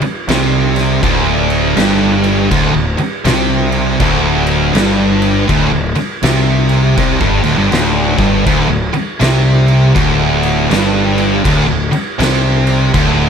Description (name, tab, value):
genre	stoner and doom metal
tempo	81 BPM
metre	4/4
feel	swing 62% on 8ths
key	unclear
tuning	A4 = 441 Hz
part	high-gain distorted guitar	riff	0.0-13.3 s	D2 to C3	-17 LUFS	equal	distortion
part	thick fuzz guitar	riff	0.0-13.3 s	D2 to C3	-17 LUFS	left 8 dB	distortion
part	thick fuzz guitar	riff	0.0-13.3 s	D2 to C3	-17 LUFS	right 9 dB	distortion
part	fuzz picked electric bass	bass	0.0-13.3 s	D1 to C2	-18 LUFS	equal	overdrive
part	oversized low-tuned drum kit	drums	0.0-13.2 s	crash cymbal, kick drum, snare drum	-18 LUFS	equal	none
room	small room ambience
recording	none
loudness	-10 LUFS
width	side -7 dB against mid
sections	0.0-13.3 A section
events	none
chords	none